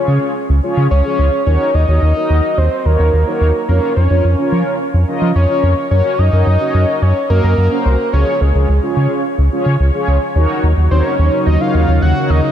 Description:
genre	synth-pop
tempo	108 BPM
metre	4/4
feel	straight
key	Eb dorian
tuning	A4 = 442 Hz
part	fat analog lead	melody	0.0-12.5 s	Ab4 to Gb5	-19 LUFS	equal	tape echo
part	mellow synth brass	accompaniment	0.0-12.4 s	Db4 to Eb5	-18 LUFS	equal	chorus
part	round analog bass	bass	0.1-12.4 s	C2 to F3	-12 LUFS	equal	none
part	chorused pulse-width pad	sustained chords	10.4-12.5 s	Db3 to Eb4	-19 LUFS	right 1 dB	none
room	moderate lush hall reverb, RT60 2.8 s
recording	dreamy mix soaked in reverb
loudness	-12 LUFS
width	side -10 dB against mid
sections	0.0-10.4 A section; 10.4-12.5 B section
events	none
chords	0.0 Db; 1.5 Ebm7; 3.7 Bbm/F; 5.9 Gb; 8.1 Db; 10.4 Ebm7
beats	0.35 0.91 | 1.46 2.02 2.58 3.13 | 3.69 4.24 4.80 5.35 | 5.91 6.46 7.02 7.58 | 8.13 8.69 9.24 9.80 | 10.35 10.91 11.46 12.02

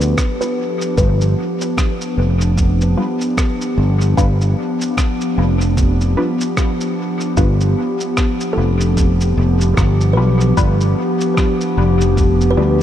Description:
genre	ambient dub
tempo	75 BPM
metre	4/4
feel	swing 59% on 16ths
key	G mixolydian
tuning	A4 = 440 Hz
part	warbly tape-like pad	sustained chords	0.0-12.8 s	F3 to G4	-19 LUFS	equal	chorus, built-in reverb
part	kalimba	arpeggios	0.0-2.9, 8.5-12.8 s	A4 to B4	-27 LUFS	left 1 dB	low-pass filter, dub echo
part	filtered dub chord stab	stabs	0.0-12.8 s	G3 to B4	-26 LUFS	left 2 dB	phaser, analog chorus, dub echo
part	overdriven fingered electric bass	bass	0.0-12.8 s	F1 to D2	-14 LUFS	equal	none
part	electronic cabasa and rim click	drums	0.0-12.5 s	none	-27 LUFS	equal	dub echo
part	electronic kick drum	drums	0.2-12.4 s	none	-17 LUFS	equal	none
room	moderate huge ambient reverb, RT60 7.5 s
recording	dreamy mix soaked in reverb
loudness	-14 LUFS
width	side -11 dB against mid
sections	0.0-12.8 A section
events	filter sweep on kalimba 0.0-12.8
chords	0.0 G7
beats	0.17 | 0.97 1.77 2.58 3.38 | 4.17 4.97 5.78 6.58 | 7.38 8.18 8.97 9.78 | 10.57 11.38 12.18

